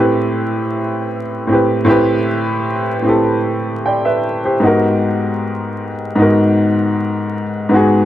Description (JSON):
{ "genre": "hip hop", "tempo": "77 BPM", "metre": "4/4", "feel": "swing 58% on 16ths", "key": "unclear", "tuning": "A4 = 442 Hz", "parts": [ { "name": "warm upright piano", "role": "solo", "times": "0.0-8.1 s", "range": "G#2 to G5", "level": "-13 LUFS", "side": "equal", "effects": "low-pass filter" } ], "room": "moderate plate reverb, RT60 2.3 s", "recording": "vinyl crackle", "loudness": "-14 LUFS", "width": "side -12 dB against mid", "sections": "0.0-8.1 A section", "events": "none", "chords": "0.0 Am9; 4.6 G#m9", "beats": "0.33 1.10 | 1.88 2.66 3.44 4.22 | 5.00 5.78 6.56 7.34" }